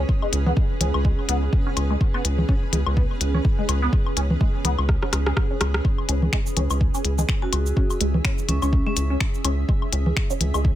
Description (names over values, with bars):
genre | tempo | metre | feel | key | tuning
minimal techno | 125 BPM | 4/4 | swing 57% on 16ths | C# minor | A4 = 439 Hz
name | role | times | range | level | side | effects
rubbery square bass | bass | 0.0-10.7 s | C#2 | -23 LUFS | equal | sidechain pumping
granular cloud pad | texture | 0.0-10.8 s | C#4 to E5 | -30 LUFS | right 2 dB | built-in reverb, sidechain pumping
electronic kick drum | drums | 0.1-10.8 s | none | -22 LUFS | equal | none
resonant blip pluck | riff | 0.2-10.6 s | G#3 to G#4 | -30 LUFS | left 1 dB | phaser, lush chorus, sidechain pumping, dub echo
woodblock and congas | percussion | 0.2-10.6 s | none | -27 LUFS | left 1 dB | overdrive, ping-pong delay
minimal click drum kit | drums | 0.3-10.6 s | cabasa, finger snaps, hi-hat, rim click | -26 LUFS | left 2 dB | none
vibraphone with hard mallets | melody | 7.4-9.1 s | C#4 to F#4 | -31 LUFS | right 1 dB | ping-pong delay
room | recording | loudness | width
light reverb | none | -20 LUFS | side -12 dB against mid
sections
0.0-10.8 A section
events
drum fill 4.9-5.8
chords
0.0 C#m